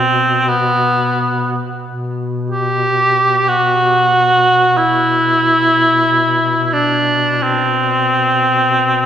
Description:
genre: caucasian folk, Caucasian lament.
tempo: free time.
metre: none.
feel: none.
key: B phrygian.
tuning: A4 = 438 Hz.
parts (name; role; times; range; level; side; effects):
clear cor anglais; melody; 0.0-9.1 s; B3 to G4; -12 LUFS; right 1 dB; none.
mellow duduk; drone; 0.0-9.1 s; B2; -21 LUFS; left 6 dB; none.
room: wet church reverb, RT60 2.9 s.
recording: recorded in a church or concert hall.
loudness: -12 LUFS.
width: side -9 dB against mid.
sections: 0.0-1.8 A section; 1.8-9.1 A section.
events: none.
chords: none.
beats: free time.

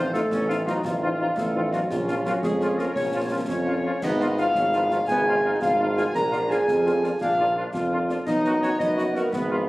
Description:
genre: military-style march for wind band.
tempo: 113 BPM (dotted quarters).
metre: 6/8.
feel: straight.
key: Bb minor.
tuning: A4 = 439 Hz.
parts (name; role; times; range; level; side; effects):
mellow euphonium; second line; 0.0-9.7 s; F3 to Bb4; -28 LUFS; right 1 dB; none.
warm woodwind section; second line; 0.0-9.7 s; F4 to Bb5; -26 LUFS; left 1 dB; none.
mellow French horn section; accompaniment; 0.0-9.6 s; D#3 to Eb4; -34 LUFS; left 3 dB; none.
warm trombone section; sustained chords; 0.0-9.7 s; F3 to F4; -29 LUFS; equal; none.
warm tuba; bass; 0.0-9.7 s; Ab1 to F#2; -27 LUFS; equal; none.
mellow trumpet section; melody; 0.1-9.6 s; F4 to F#4; -33 LUFS; equal; none.
concert snare drum, concert bass drum and clash cymbals; drums; 0.1-9.5 s; none; -36 LUFS; left 1 dB; none.
room: wet recital hall reverb, RT60 1.4 s.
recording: recorded on a phone in the room, studio ambience, compression.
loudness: -21 LUFS.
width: side -19 dB against mid.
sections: 0.0-9.7 A section.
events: none.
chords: 0.0 F7/A; 1.9 Bbm; 4.0 Fm7b5/Ab; 6.1 Bb7; 8.3 B.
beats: 0.31 | 0.84 1.37 | 1.90 2.43 | 2.96 3.49 | 4.02 4.55 | 5.08 5.61 | 6.14 6.67 | 7.21 7.74 | 8.27 8.80 | 9.33.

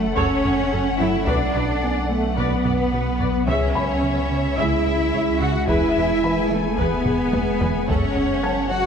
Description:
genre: cinematic, hybrid orchestral and electronic film score.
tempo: 109 BPM.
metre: 4/4.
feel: straight.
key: F# minor.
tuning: A4 = 440 Hz.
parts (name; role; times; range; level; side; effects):
warm symphonic violin section; melody; 0.0-8.9 s; E5 to G#5; -32 LUFS; left 5 dB; none.
dark symphonic violin section; second line; 0.0-8.9 s; A4 to F#5; -29 LUFS; left 4 dB; none.
ethereal airy pad; sustained chords; 0.0-8.9 s; F#3 to F#5; -27 LUFS; equal; ensemble chorus, built-in reverb.
warm French horn section; sustained chords; 0.0-8.9 s; A3 to F#4; -29 LUFS; left 3 dB; none.
round analog bass; riff; 0.0-8.9 s; C#2 to B3; -30 LUFS; right 2 dB; none.
clear studio cello section; bass; 0.0-8.9 s; A3 to F#4; -24 LUFS; right 3 dB; none.
punchy sub bass; bass; 0.0-8.9 s; E1 to C#2; -28 LUFS; equal; none.
impact; sound effects; 0.0-1.3 s; none; barely audible; none; none.
felt-muted upright piano; texture; 0.0-8.9 s; B4 to G#6; -34 LUFS; left 2 dB; none.
warm symphonic viola section; accompaniment; 0.2-8.2 s; G#4 to E5; -29 LUFS; equal; none.
warm studio double bass section; bass; 0.2-8.2 s; B1 to F#2; -31 LUFS; right 3 dB; none.
taiko ensemble; drums; 0.2-8.4 s; none; -28 LUFS; left 1 dB; none.
room: wet concert hall reverb, RT60 2.4 s.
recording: none.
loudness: -18 LUFS.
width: side -7 dB against mid.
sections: 0.0-8.9 A section.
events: impact 0.0-1.3; drum fill 7.1-7.9.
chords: 0.0 F#m; 1.3 Bm; 3.5 C#m; 5.7 E; 7.9 F#m.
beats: 0.17 0.72 | 1.27 1.83 2.38 2.93 | 3.48 4.03 4.58 5.13 | 5.68 6.23 6.78 7.33 | 7.88 8.43.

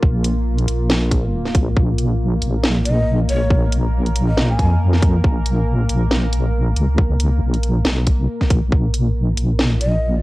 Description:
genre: deep dubstep.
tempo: 138 BPM.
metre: 4/4.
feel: swing 57% on 16ths, half-time.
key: Bb minor.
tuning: A4 = 440 Hz.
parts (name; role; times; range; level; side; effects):
deep dark ambient pad; sustained chords; 0.0-10.2 s; Bb3 to Bb4; -27 LUFS; left 1 dB; chorus, built-in reverb, cassette tape.
deep soft wobble bass; bass; 0.0-10.2 s; Bb1 to F2; -17 LUFS; equal; chorus, tube saturation.
electronic kick drum; drums; 0.0-8.8 s; none; -16 LUFS; equal; cassette tape.
garage drum kit; drums; 0.2-9.9 s; hi-hat, snare drum; -21 LUFS; equal; cassette tape.
breathy mellow shakuhachi; melody; 2.8-4.8, 9.8-10.1 s; Db5 to Ab5; -26 LUFS; equal; cassette tape, dub echo.
room: digital ambience.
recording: home recording on cassette.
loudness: -15 LUFS.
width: side -19 dB against mid.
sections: 0.0-10.2 A section.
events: none.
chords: 0.0 Bb5.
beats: | 0.03 0.46 0.90 1.33 | 1.77 2.20 2.63 3.07 | 3.50 3.94 4.38 4.81 | 5.24 5.68 6.11 6.55 | 6.98 7.42 7.85 8.29 | 8.72 9.16 9.59 10.03.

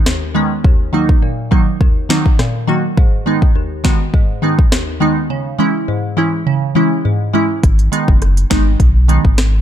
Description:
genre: dancehall.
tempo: 103 BPM.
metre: 4/4.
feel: straight.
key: G# minor.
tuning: A4 = 438 Hz.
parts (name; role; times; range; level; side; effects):
glassy wavetable pluck; accompaniment; 0.1-9.2 s; D#2 to F#4; -16 LUFS; right 1 dB; chorus.
afro-pop drum kit; drums; 0.1-9.5 s; hi-hat, kick drum, rim click, snare drum; -12 LUFS; equal; none.
warm sub bass; bass; 7.6-9.6 s; F#1 to B1; -13 LUFS; equal; none.
room: digital ambience.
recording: dark, warm production.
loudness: -12 LUFS.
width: side -10 dB against mid.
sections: 0.0-7.6 A section; 7.6-9.6 B section.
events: none.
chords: 0.0 G#m; 0.6 D#m; 3.0 G#m; 5.3 C#m; 7.6 G#m.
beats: 0.06 | 0.65 1.23 1.81 2.39 | 2.98 3.56 4.14 4.72 | 5.30 5.89 6.47 7.05 | 7.63 8.22 8.80 9.38.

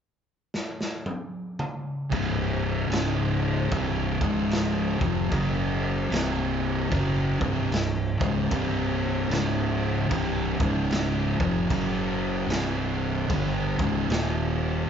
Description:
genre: stoner and doom metal.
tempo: 75 BPM.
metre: 4/4.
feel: swing 62% on 8ths.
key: unclear.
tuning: A4 = 441 Hz.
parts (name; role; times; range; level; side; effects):
raw garage drum kit; drums; 0.5-14.3 s; crash cymbal, kick drum, snare drum, toms; -30 LUFS; equal; none.
thick fuzz guitar; riff; 2.1-14.9 s; C2 to G3; -29 LUFS; left 7 dB; distortion.
thick fuzz guitar; riff; 2.1-14.9 s; C2 to G3; -29 LUFS; right 6 dB; distortion.
fuzz fingered electric bass; bass; 2.1-14.8 s; C1 to G1; -30 LUFS; equal; overdrive.
room: moderate large studio reverb, RT60 0.9 s.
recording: band playing live in one room, nothing above 7.5 kHz.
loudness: -24 LUFS.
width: side -8 dB against mid.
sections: 0.0-2.1 A section; 2.1-14.9 B section.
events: drum fill 0.5-2.1.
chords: 0.0 N.C.; 2.1 C5; 2.9 Db5; 3.7 C5; 4.1 Db5; 4.9 F5; 5.3 F#5; 6.1 C5; 9.3 Db5; 10.1 C5; 10.5 Db5; 11.3 F5; 11.7 F#5; 12.5 C5; 14.1 Eb5.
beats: 0.52 1.32 | 2.12 2.92 3.72 4.51 | 5.31 6.11 6.91 7.71 | 8.51 9.30 10.10 10.90 | 11.70 12.50 13.30 14.10.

